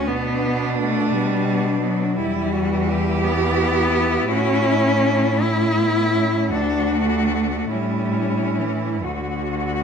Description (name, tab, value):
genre	classical, lyrical piece for cello ensemble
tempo	42-60 BPM (dotted quarters)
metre	6/8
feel	rubato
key	unclear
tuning	A4 = 440 Hz
part	clear cello	melody	0.0-9.8 s	B3 to F#4	-27 LUFS	left 8 dB	none
part	rich cello	second line	0.0-9.8 s	B3 to G4	-26 LUFS	right 8 dB	none
part	rich cello	accompaniment	0.0-9.8 s	D3 to E4	-21 LUFS	left 2 dB	none
part	warm cello	bass	0.1-9.8 s	D2 to B2	-24 LUFS	right 3 dB	none
room	moderate recital hall reverb, RT60 1.5 s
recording	dark, warm production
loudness	-18 LUFS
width	side -6 dB against mid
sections	0.0-9.8 A section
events	none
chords	0.1 Bm; 2.2 Em; 4.3 A; 6.5 D; 7.7 A7; 9.1 D